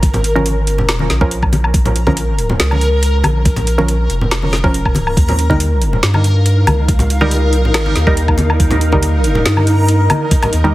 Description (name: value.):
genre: deep dubstep.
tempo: 140 BPM.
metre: 4/4.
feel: half-time.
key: Bb dorian.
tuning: A4 = 441 Hz.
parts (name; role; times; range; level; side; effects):
soft dub sub bass; bass; 0.0-10.7 s; F1 to G2; -14 LUFS; equal; none.
electronic kick drum; drums; 0.0-10.4 s; none; -15 LUFS; equal; overdrive.
garage drum kit; drums; 0.0-10.6 s; hi-hat, snare drum, woodblock; -20 LUFS; equal; overdrive.
congas; percussion; 0.0-10.7 s; none; -21 LUFS; left 1 dB; none.
backwards swelling texture; texture; 0.0-10.7 s; Bb4; -23 LUFS; left 1 dB; built-in reverb.
filtered dub chord stab; stabs; 0.4-10.7 s; F3 to Bb4; -20 LUFS; right 1 dB; chorus, dub echo.
granular cloud pad; sustained chords; 6.2-10.7 s; Eb4 to F5; -20 LUFS; equal; built-in reverb.
room: digital ambience.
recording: heavily compressed radio sound.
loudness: -11 LUFS.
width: side -16 dB against mid.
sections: 0.0-10.7 A section.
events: none.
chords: 0.0 Bbm; 5.2 Eb.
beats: | 0.03 0.46 0.88 1.31 | 1.74 2.17 2.60 3.03 | 3.46 3.88 4.31 4.74 | 5.17 5.60 6.03 6.46 | 6.88 7.31 7.74 8.17 | 8.60 9.03 9.46 9.88 | 10.31 10.74.